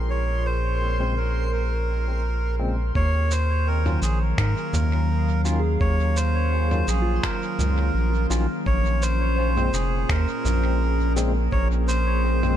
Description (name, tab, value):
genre	ambient dub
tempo	84 BPM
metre	4/4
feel	swing 54% on 16ths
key	unclear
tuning	A4 = 440 Hz
part	warbly tape-like pad	sustained chords	0.0-12.6 s	Bb2 to F5	-29 LUFS	equal	chorus, built-in reverb
part	soft synth bell	arpeggios	0.0-12.6 s	F4 to C6	-37 LUFS	right 1 dB	chorus, dub echo
part	round analog bass	bass	0.0-12.6 s	F1 to Ab2	-22 LUFS	equal	tube saturation
part	backwards swelling texture	texture	0.0-3.0 s	C6	-41 LUFS	left 2 dB	built-in reverb
part	melodica	melody	0.1-12.6 s	Ab4 to Db5	-28 LUFS	right 1 dB	dub echo
part	overdriven tine electric piano	stabs	1.0-12.6 s	Bb2 to F4	-34 LUFS	left 3 dB	fast tremolo, dub echo
part	electronic kick drum	drums	3.0-11.7 s	none	-27 LUFS	equal	none
part	lo-fi sampler-style drum kit	drums	3.3-12.6 s	cabasa, finger snaps, toms	-33 LUFS	right 1 dB	dub echo
room	light reverb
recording	none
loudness	-20 LUFS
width	side -10 dB against mid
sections	0.0-3.0 A section; 3.0-12.6 B section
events	none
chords	0.0 Bbm9; 3.0 Ebm9; 8.7 Bbm9